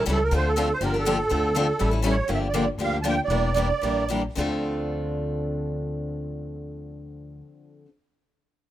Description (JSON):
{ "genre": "acoustic string swing (jazz manouche)", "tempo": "208-245 BPM", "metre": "4/4", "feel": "swing 56% on 8ths", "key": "D minor", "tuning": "A4 = 437 Hz", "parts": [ { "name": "musette accordion", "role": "melody", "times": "0.0-4.1 s", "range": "A4 to A5", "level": "-25 LUFS", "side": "right 3 dB", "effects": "none" }, { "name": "picked steel-string acoustic guitar", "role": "accompaniment", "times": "0.0-7.9 s", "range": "D3 to A4", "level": "-30 LUFS", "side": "left 6 dB", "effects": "none" }, { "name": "picked steel-string acoustic guitar", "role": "accompaniment", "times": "0.0-7.9 s", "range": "D3 to Bb4", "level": "-30 LUFS", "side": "right 2 dB", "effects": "plate reverb" }, { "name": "upright bass", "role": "bass", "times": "0.0-7.4 s", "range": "E1 to D2", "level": "-28 LUFS", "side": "left 1 dB", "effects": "none" } ], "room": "moderate small room ambience, RT60 0.5 s", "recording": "rough home demo mix", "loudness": "-22 LUFS", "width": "side -13 dB against mid", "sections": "0.0-2.3 A section; 2.3-4.4 B section; 4.4-6.7 C section", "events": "slowing down 2.3-4.4", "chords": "0.3 Dm7; 0.8 Gm9; 1.3 Dm7; 1.8 A7; 2.3 Gm7; 3.3 Em7b5; 4.4 Dm7" }